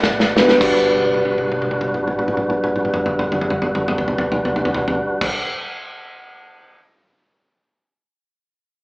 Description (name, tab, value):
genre	uptempo gospel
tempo	102 BPM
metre	4/4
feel	swing 59% on 8ths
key	G major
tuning	A4 = 440 Hz
part	percussive tonewheel organ	sustained chords	0.0-5.3 s	G3 to G5	-21 LUFS	equal	slow rotary speaker, overdrive, chorus vibrato
part	fingered electric bass with an envelope filter	bass	0.0-5.3 s	G1 to B1	-36 LUFS	equal	none
part	natural country drum kit	drums	0.0-6.8 s	crash cymbal, kick drum, snare drum, toms	-21 LUFS	equal	none
part	bell-like tine electric piano	accompaniment	0.4-5.3 s	G2 to B4	-20 LUFS	equal	fast stereo tremolo
room	wet large studio reverb, RT60 1.2 s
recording	band playing live in one room, AM radio sound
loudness	-16 LUFS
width	side -30 dB against mid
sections	0.6-5.3 A section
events	drum fill 0.0-0.6, 0.9-5.2; tonewheel organ fill 0.0-0.6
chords	0.0 Gmaj7